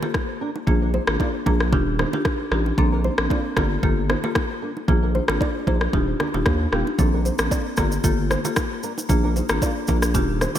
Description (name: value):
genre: afrobeats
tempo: 114 BPM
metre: 4/4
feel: swing 55% on 16ths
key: Bb major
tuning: A4 = 440 Hz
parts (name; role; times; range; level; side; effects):
- marimba with medium mallets; accompaniment; 0.0-10.6 s; Bb3 to A4; -26 LUFS; left 2 dB; none
- bongos and congas; percussion; 0.0-10.6 s; none; -31 LUFS; right 6 dB; none
- afro-pop drum kit; drums; 0.1-10.6 s; kick drum, rim click, shaker; -23 LUFS; equal; gated reverb
- nylon-string guitar; riff; 0.4-10.5 s; Bb3 to D5; -31 LUFS; right 1 dB; analog chorus, ping-pong delay
- saturated sub bass; bass; 0.7-10.5 s; Eb1 to Eb2; -23 LUFS; equal; none
room: light reverb, studio ambience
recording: bright 1980s-style digital production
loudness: -19 LUFS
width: side -10 dB against mid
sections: 0.0-10.6 A section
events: break 0.0-7.0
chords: 0.0 Gm9; 0.7 Bb7; 1.7 Ebmaj9; 2.8 Bbmaj9; 3.6 Gm9; 4.9 Bb7; 5.9 Ebmaj9; 7.0 Bbmaj9; 7.8 Gm9; 9.1 Bb7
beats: 0.15 | 0.67 1.20 1.73 2.25 | 2.78 3.31 3.83 4.36 | 4.88 5.41 5.94 6.46 | 6.99 7.52 8.04 8.57 | 9.09 9.62 10.15